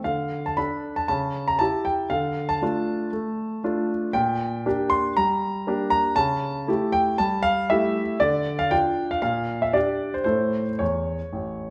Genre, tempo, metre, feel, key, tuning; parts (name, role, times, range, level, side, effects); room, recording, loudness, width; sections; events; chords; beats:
classical-period piano sonatina; 117 BPM; 4/4; straight; A4 = 440 Hz
clear grand piano; solo; 0.0-11.7 s; A1 to C6; -24 LUFS; equal
moderate recital hall reverb, RT60 1.6 s; -24 LUFS; mono
0.0-11.7 A section
0.1 D5; 1.1 A7b9/C#; 2.1 Dm; 4.1 Gm/Bb; 6.2 A7/C#; 8.2 Dm; 9.2 Gm/Bb; 10.3 A
| 0.06 0.57 1.08 1.60 | 2.11 2.62 3.13 3.64 | 4.15 4.65 5.16 5.67 | 6.17 6.68 7.19 7.70 | 8.20 8.72 9.24 9.76 | 10.28 10.81 11.34